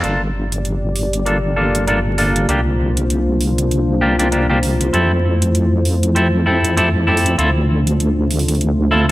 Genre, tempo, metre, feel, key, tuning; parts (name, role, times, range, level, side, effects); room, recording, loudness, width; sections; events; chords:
glitch hop; 98 BPM; 4/4; swing 58% on 16ths; G dorian; A4 = 440 Hz
dark analog pad; sustained chords; 0.0-9.1 s; A3 to D5; -20 LUFS; left 1 dB; chorus
clean electric guitar; stabs; 0.0-9.1 s; Bb3 to A4; -18 LUFS; equal; low-pass filter, digital delay
wobble bass; bass; 0.0-9.1 s; G1 to F2; -17 LUFS; equal; chorus, tube saturation
electronic hi-hat; drums; 0.0-8.8 s; -25 LUFS; right 2 dB; gated reverb
moderate lush hall reverb, RT60 2.0 s; bright 1980s-style digital production, vinyl crackle; -14 LUFS; side -17 dB against mid
0.0-9.1 A section
0.0 Gm7; 2.5 C9sus4; 4.9 Fmaj7; 7.4 Dm7